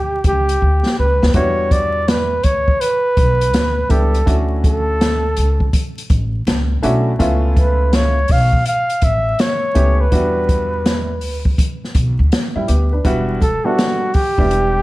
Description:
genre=hip hop, jazz-hop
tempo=82 BPM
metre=4/4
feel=swing 66% on 16ths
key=E dorian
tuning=A4 = 440 Hz
part: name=breathy flugelhorn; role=melody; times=0.0-14.8 s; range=F#4 to E#5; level=-18 LUFS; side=equal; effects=slapback echo
part: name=upright bass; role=bass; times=0.0-14.8 s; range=E1 to F#2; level=-18 LUFS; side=equal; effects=none
part: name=open jazz drum kit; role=drums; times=0.2-14.7 s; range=hi-hat, kick drum, snare drum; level=-18 LUFS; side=equal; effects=none
part: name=warm upright piano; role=accompaniment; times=1.3-14.8 s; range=G3 to B4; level=-21 LUFS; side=equal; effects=none
room=small room ambience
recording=dark, warm production, vinyl crackle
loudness=-14 LUFS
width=side -18 dB against mid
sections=0.0-1.3 A section; 1.3-13.0 B section; 13.0-14.8 C section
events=break 0.0-1.3; drum fill 0.6-1.3; flugelhorn solo 13.0-14.8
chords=0.0 Em7 (rootless); 1.3 Em7; 4.3 Dmaj9; 7.2 C#7alt; 10.1 Em9; 13.0 Em7

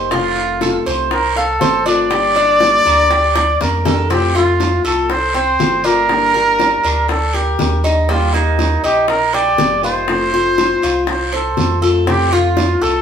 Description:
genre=latin, Cuban son and guajira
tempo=120 BPM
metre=4/4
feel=straight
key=unclear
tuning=A4 = 443 Hz
part: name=fingerpicked steel-string acoustic guitar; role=accompaniment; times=0.0-13.0 s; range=C3 to G4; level=-20 LUFS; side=left 5 dB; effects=none
part: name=Cuban tres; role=arpeggios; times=0.0-13.0 s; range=G3 to F5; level=-20 LUFS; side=right 2 dB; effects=none
part: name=sub bass with octave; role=bass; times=0.0-13.0 s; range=F1 to F2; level=-21 LUFS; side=right 1 dB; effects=none
part: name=breathy trumpet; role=melody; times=0.1-13.0 s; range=Eb4 to D5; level=-15 LUFS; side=right 1 dB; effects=none
part: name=bongos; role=percussion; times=0.1-13.0 s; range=none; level=-22 LUFS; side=left 3 dB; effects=none
part: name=guiro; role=percussion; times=0.1-13.0 s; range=none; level=-27 LUFS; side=right 3 dB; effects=none
room=wet studio reverb, RT60 0.6 s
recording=band playing live in one room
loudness=-12 LUFS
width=side -8 dB against mid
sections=0.0-4.1 A section; 4.1-13.0 B section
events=drum fill 3.4-4.1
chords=0.1 F7; 2.1 Gm; 4.1 F; 6.1 Gm; 8.1 Eb; 10.1 F

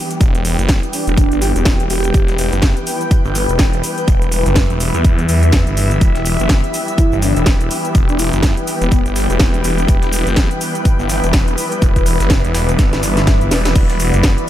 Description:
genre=bass house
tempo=124 BPM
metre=4/4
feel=swing 58% on 16ths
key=E minor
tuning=A4 = 440 Hz
part: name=bright studio string section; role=sustained chords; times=0.0-14.5 s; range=E3 to B4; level=-23 LUFS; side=left 1 dB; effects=sidechain pumping, low-pass filter
part: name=granular cloud pad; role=texture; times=0.0-14.5 s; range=E4 to G5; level=-23 LUFS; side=left 1 dB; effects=built-in reverb, sidechain pumping
part: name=house drum kit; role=drums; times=0.1-14.5 s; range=cabasa, crash cymbal, hi-hat, snare drum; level=-22 LUFS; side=equal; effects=none
part: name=phased detuned saw bass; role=bass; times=0.2-14.4 s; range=E1 to E2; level=-17 LUFS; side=equal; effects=phaser, tube saturation, sidechain pumping
part: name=electronic kick drum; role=drums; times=0.2-14.4 s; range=none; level=-14 LUFS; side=equal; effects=none
part: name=electronic tambourine and snare drum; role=drums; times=0.2-14.4 s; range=none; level=-31 LUFS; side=equal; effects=none
part: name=breathy flute-like synth lead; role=melody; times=0.9-2.6, 7.0-9.0 s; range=B3 to G4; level=-23 LUFS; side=equal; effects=analog chorus, diffuse ambient delay
part: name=swell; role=sound effects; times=13.0-13.8 s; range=none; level=-29 LUFS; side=equal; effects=none
room=light reverb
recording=none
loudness=-12 LUFS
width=side -12 dB against mid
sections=0.0-14.5 A section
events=drum fill 12.8-13.8; swell 13.0-13.8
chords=0.0 Em

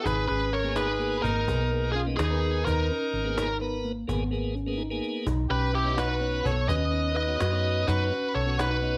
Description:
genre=progressive instrumental, band music in an uneven meter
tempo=254 BPM (eighths)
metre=11/8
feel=straight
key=unclear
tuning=A4 = 440 Hz
part: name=bluesy overdriven lead guitar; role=melody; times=0.0-9.0 s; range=G4 to D#5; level=-31 LUFS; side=equal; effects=distortion
part: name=raspy alto saxophone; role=second line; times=0.0-9.0 s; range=D#4 to B4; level=-37 LUFS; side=equal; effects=slapback echo
part: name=tonewheel organ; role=accompaniment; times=0.0-9.0 s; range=A#3 to B4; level=-36 LUFS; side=equal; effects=slow rotary speaker
part: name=mellow tine electric piano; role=arpeggios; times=0.1-9.0 s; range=A#3 to F#4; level=-37 LUFS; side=equal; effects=slapback echo
part: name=hollow-body short-scale fingered electric bass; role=bass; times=0.1-9.0 s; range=G#1 to F#2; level=-31 LUFS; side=equal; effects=none
part: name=cajon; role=drums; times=0.1-8.9 s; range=none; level=-38 LUFS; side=equal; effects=none
room=moderate studio reverb, RT60 0.7 s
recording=worn, warbling old tape, cassette tape, warbly pitch drift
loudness=-27 LUFS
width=mono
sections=0.0-9.0 A section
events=kick and snare drop out 4.8-5.3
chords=0.1 G#madd9; 5.3 Badd9

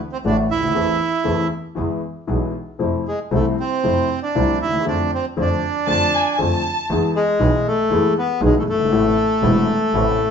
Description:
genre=tango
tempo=118 BPM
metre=4/4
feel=rubato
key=A harmonic minor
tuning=A4 = 439 Hz
part: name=bandoneon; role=melody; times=0.1-10.3 s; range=G#3 to E4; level=-20 LUFS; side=equal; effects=none
part: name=warm upright piano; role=accompaniment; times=0.2-10.2 s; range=E1 to A4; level=-22 LUFS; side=left 4 dB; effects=none
part: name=clear double bass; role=bass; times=0.2-10.2 s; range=E1 to F2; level=-23 LUFS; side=right 2 dB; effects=none
part: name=warm chamber violin section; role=second line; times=5.9-7.0 s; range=G#5 to A5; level=-20 LUFS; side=right 1 dB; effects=none
room=wet studio reverb, RT60 0.8 s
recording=band playing live in one room, nothing above 7.6 kHz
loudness=-17 LUFS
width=side -7 dB against mid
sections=0.0-10.3 A section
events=none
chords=0.0 Dadd9; 0.7 Am/E; 1.8 E; 2.8 Fmaj7; 4.9 Dm/F; 6.9 E; 8.9 Amadd9

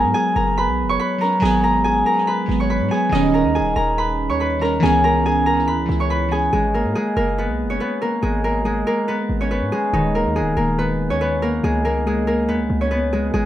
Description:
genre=hip hop, trap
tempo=141 BPM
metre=4/4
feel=half-time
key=G# minor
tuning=A4 = 442 Hz
part: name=concert harp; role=melody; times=0.0-13.5 s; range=D#3 to C#6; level=-18 LUFS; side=equal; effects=none
part: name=glassy digital keys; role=accompaniment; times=0.0-6.6 s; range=D#3 to E4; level=-21 LUFS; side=right 2 dB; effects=chorus
part: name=hard-hitting 808-style bass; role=bass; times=0.0-13.5 s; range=D#1 to G#2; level=-24 LUFS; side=equal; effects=none
room=studio reverb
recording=rough home demo mix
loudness=-17 LUFS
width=side -12 dB against mid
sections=0.0-6.5 A section; 6.5-13.5 B section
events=none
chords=0.0 G#m7; 3.1 D#7; 4.8 C#m7; 6.5 G#m7; 9.9 D#5; 11.6 C#5

